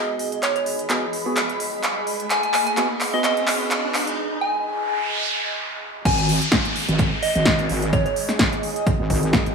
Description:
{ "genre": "bass house", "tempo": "128 BPM", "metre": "4/4", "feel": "swing 55% on 16ths", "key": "G# minor", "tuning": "A4 = 444 Hz", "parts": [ { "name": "percussive organ stab", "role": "stabs", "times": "0.0-4.2 s", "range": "B3 to G#4", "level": "-29 LUFS", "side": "right 2 dB", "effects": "chorus, sidechain pumping, tape echo" }, { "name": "riser, noise sweep and downlifter", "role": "sound effects", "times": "1.1-9.5 s", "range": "none", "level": "-28 LUFS", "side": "equal", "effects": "none" }, { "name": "granular cloud pad", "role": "texture", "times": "0.0-9.5 s", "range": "G#4 to B5", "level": "-29 LUFS", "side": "right 1 dB", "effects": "built-in reverb, sidechain pumping" }, { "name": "big-room dance drum kit", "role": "drums", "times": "0.2-9.5 s", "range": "crash cymbal, handclaps, hi-hat, snare drum", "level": "-23 LUFS", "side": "equal", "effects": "overdrive, high-pass filter on hats, high-pass filter on snare, high-pass filter on cymbals, high-pass filter on room" }, { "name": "soft synth bell", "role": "melody", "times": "0.4-8.1 s", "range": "C#5 to G#5", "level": "-25 LUFS", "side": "equal", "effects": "chorus, phaser, tape echo" }, { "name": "wobble bass", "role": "bass", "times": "6.1-9.5 s", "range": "G#1", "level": "-22 LUFS", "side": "right 1 dB", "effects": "chorus, overdrive, sidechain pumping" }, { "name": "electronic kick drum", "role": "drums", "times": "6.1-9.4 s", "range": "none", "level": "-23 LUFS", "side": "equal", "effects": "overdrive" } ], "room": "moderate digital room reverb, RT60 1.4 s, digital ambience", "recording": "high-pass filter, studio ambience", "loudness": "-19 LUFS", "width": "side -5 dB against mid", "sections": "0.0-6.1 A section; 6.1-9.5 B section", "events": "build-up 0.0-6.1; drum fill 0.0-4.2; riser 1.1-4.2; break 4.2-6.1; noise sweep 4.2-6.1; drop 6.1-9.5", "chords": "0.0 G#m7; 6.1 G#5" }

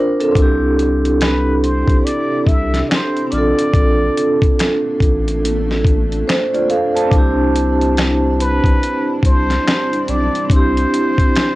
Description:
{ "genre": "lo-fi hip hop", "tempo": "71 BPM", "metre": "4/4", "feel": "swing 61% on 16ths", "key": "C major", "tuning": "A4 = 440 Hz", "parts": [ { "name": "vibraphone with soft mallets", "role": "accompaniment", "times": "0.0-11.6 s", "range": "C4 to A5", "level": "-16 LUFS", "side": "right 1 dB", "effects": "cassette tape" }, { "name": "dusty soul sampler-style drum kit", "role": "drums", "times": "0.2-11.6 s", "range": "finger snaps, hi-hat, kick drum, snare drum", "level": "-16 LUFS", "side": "equal", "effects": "cassette tape" }, { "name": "granular cloud pad", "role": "sustained chords", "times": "1.6-11.6 s", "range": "C3 to E4", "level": "-28 LUFS", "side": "equal", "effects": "built-in reverb, cassette tape" }, { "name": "saturated sub bass", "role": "bass", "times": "0.4-10.9 s", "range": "A1 to C2", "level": "-19 LUFS", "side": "equal", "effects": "none" }, { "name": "trumpet with plunger mute", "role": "melody", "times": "1.2-11.6 s", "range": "B4 to E5", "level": "-22 LUFS", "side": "equal", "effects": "none" } ], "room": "light reverb", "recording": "home recording on cassette", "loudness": "-13 LUFS", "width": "side -18 dB against mid", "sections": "0.0-11.6 A section", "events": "none", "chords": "0.4 Cadd9; 3.3 Bbmaj9; 7.1 Cadd9" }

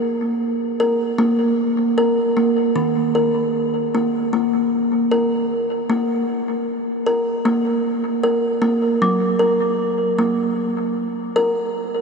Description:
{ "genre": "world meditative, meditative tuned percussion", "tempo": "77 BPM", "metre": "4/4", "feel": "swing 54% on 16ths", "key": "unclear", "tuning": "A4 = 440 Hz", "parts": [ { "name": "kalimba", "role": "solo", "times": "0.0-12.0 s", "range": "Eb3 to Bb4", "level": "-17 LUFS", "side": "equal", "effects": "tape echo" } ], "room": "wet huge ambient reverb, RT60 7.3 s", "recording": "dreamy mix soaked in reverb", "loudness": "-17 LUFS", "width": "side -4 dB against mid", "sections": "0.0-5.9 A section; 5.9-12.0 B section", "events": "none", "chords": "0.0 N.C.; 2.8 Eb5; 4.3 N.C.; 9.0 Gb" }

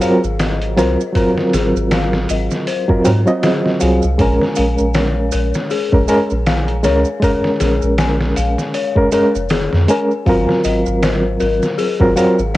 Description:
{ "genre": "trip hop", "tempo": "79 BPM", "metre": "4/4", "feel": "swing 57% on 16ths", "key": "Bb minor", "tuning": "A4 = 443 Hz", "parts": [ { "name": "overdriven reed electric piano", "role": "accompaniment", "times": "0.0-12.4 s", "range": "Gb3 to Eb5", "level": "-16 LUFS", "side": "right 1 dB", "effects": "fast tremolo, cassette tape, tape echo" }, { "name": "dark detuned synth bell", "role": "arpeggios", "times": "0.0-12.6 s", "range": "Ab4 to Ab5", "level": "-22 LUFS", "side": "left 7 dB", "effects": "chorus, cassette tape, tape echo" }, { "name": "trip hop sampler-style drum kit", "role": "drums", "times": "0.0-12.6 s", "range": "hi-hat, kick drum, snare drum", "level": "-20 LUFS", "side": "equal", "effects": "small room ambience, cassette tape" }, { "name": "maracas", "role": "percussion", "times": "0.0-12.6 s", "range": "none", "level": "-32 LUFS", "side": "right 11 dB", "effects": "none" }, { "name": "soft dub sub bass", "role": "bass", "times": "0.2-12.6 s", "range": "F1 to Ab2", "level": "-18 LUFS", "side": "equal", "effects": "none" } ], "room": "light reverb, digital ambience", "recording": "home recording on cassette", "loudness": "-13 LUFS", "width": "side -16 dB against mid", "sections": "0.0-12.6 A section", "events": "none", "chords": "0.0 Ab13; 4.2 Bbm7; 10.3 Ab13" }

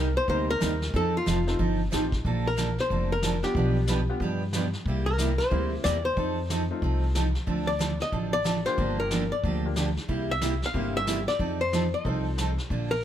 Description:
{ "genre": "country, western swing", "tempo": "184 BPM", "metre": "4/4", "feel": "swing 62% on 8ths", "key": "unclear", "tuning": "A4 = 440 Hz", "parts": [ { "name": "archtop guitar, miked and amplified", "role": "melody", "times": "0.0-13.0 s", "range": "F4 to F5", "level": "-29 LUFS", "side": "left 2 dB", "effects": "none" }, { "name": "picked steel-string acoustic guitar", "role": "accompaniment", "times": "0.0-12.9 s", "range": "B2 to B4", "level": "-30 LUFS", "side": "right 3 dB", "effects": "none" }, { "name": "upright bass", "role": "bass", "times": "0.0-13.0 s", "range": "F1 to G2", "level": "-29 LUFS", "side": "equal", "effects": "none" }, { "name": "bright upright piano", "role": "accompaniment", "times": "0.3-12.5 s", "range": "A3 to Bb4", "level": "-36 LUFS", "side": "left 4 dB", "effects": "none" }, { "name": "vintage brush drum kit", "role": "drums", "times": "0.3-13.0 s", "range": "brushed snare drum, hi-hat, kick drum, snare drum", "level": "-34 LUFS", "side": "left 1 dB", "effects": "none" } ], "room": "light reverb", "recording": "none", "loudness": "-24 LUFS", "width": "side -10 dB against mid", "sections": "0.0-13.0 A section", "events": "none", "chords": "0.0 Cm7; 0.9 F7; 2.2 Bbmaj7; 3.6 G7/B; 4.9 C7; 6.2 F7; 7.5 Dm7; 8.8 Gm7; 10.1 C7; 11.4 F7" }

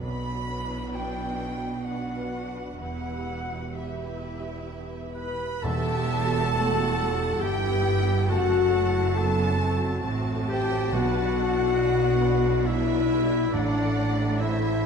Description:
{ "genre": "cinematic, emotional film score for orchestra", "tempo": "62-70 BPM", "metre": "3/4", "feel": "rubato", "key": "E minor", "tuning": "A4 = 438 Hz", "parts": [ { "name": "rich studio violin section", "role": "melody", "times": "0.0-14.9 s", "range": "B4 to A5", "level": "-38 LUFS", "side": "left 2 dB", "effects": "none" }, { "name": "rich studio violin section", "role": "second line", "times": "0.0-14.9 s", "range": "D5 to B5", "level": "-36 LUFS", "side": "equal", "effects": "none" }, { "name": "silver concert flute", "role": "second line", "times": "0.0-14.9 s", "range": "D5 to B5", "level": "-37 LUFS", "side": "left 1 dB", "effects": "none" }, { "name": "rich studio viola section", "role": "accompaniment", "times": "0.0-14.9 s", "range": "F#3 to D5", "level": "-36 LUFS", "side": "right 2 dB", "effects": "none" }, { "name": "warm grand piano", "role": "accompaniment", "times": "0.0-14.9 s", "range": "A1 to B4", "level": "-35 LUFS", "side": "equal", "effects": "none" }, { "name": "rich studio cello section", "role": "bass", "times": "0.0-14.9 s", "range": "E2 to B2", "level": "-32 LUFS", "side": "right 3 dB", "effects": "none" }, { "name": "rich studio double bass section", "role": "bass", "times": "0.0-14.9 s", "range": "E1 to B1", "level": "-30 LUFS", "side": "right 4 dB", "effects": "none" }, { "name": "warm oboe", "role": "second line", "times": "5.1-14.9 s", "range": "D4 to B4", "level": "-37 LUFS", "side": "right 1 dB", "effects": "none" }, { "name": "warm clarinet", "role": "second line", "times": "5.2-14.9 s", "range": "D4 to B4", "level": "-35 LUFS", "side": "left 1 dB", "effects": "none" }, { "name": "dark French horn section", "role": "sustained chords", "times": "5.2-14.9 s", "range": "D4 to B4", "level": "-26 LUFS", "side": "left 5 dB", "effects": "none" }, { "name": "timpani", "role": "percussion", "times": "5.6-12.2 s", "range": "E2 to B2", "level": "-34 LUFS", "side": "equal", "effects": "none" } ], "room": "moderate scoring stage reverb, RT60 1.6 s", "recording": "dark, warm production", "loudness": "-23 LUFS", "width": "side -6 dB against mid", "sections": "0.0-5.6 A section; 5.6-14.9 B section", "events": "none", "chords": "0.0 Bm; 2.8 Em; 8.3 F#dim; 10.9 Bm; 13.5 Am" }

